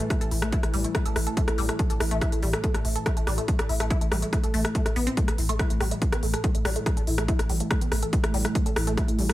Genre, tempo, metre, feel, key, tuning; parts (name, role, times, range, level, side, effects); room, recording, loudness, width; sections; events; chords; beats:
driving peak-time techno; 142 BPM; 4/4; straight; A4 = 440 Hz
resonant blip pluck; riff; 0.0-9.3 s; G3 to A4; -30 LUFS; equal; phaser, tube saturation, sidechain pumping, dub echo
analog drone; drone; 0.0-9.3 s; A2 to E3; -34 LUFS; equal; chorus, sidechain pumping
techno drum kit; drums; 0.0-9.3 s; hi-hat, rim click; -30 LUFS; equal; overdrive, studio reverb
electronic kick drum; drums; 0.1-9.1 s; -25 LUFS; equal; overdrive, studio reverb
saturated sub bass; bass; 0.2-9.3 s; A1; -29 LUFS; equal; overdrive, sidechain pumping, low-pass filter
light reverb, digital ambience; -23 LUFS; side -16 dB against mid
0.0-9.3 A section
0.0 A5
| 0.10 0.52 0.95 1.37 | 1.79 2.21 2.64 3.06 | 3.48 3.90 4.33 4.75 | 5.17 5.59 6.02 6.44 | 6.86 7.29 7.71 8.13 | 8.55 8.97